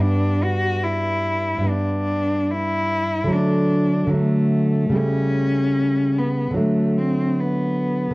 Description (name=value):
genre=romantic duo for cello and classical guitar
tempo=74 BPM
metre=4/4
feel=rubato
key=G major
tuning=A4 = 440 Hz
part: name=warm cello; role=melody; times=0.0-8.1 s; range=A3 to F#4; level=-22 LUFS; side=left 1 dB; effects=none
part: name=nylon-string guitar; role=accompaniment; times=0.0-8.1 s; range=G2 to B3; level=-20 LUFS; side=right 1 dB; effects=cassette tape
room=light reverb, small room ambience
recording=home recording on cassette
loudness=-18 LUFS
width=side -22 dB against mid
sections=0.0-8.1 A section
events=none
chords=0.0 G; 3.3 D; 5.0 A7/C#; 6.6 D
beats=| 0.01 0.84 1.69 2.52 | 3.33 4.16 4.98 5.79 | 6.59 7.39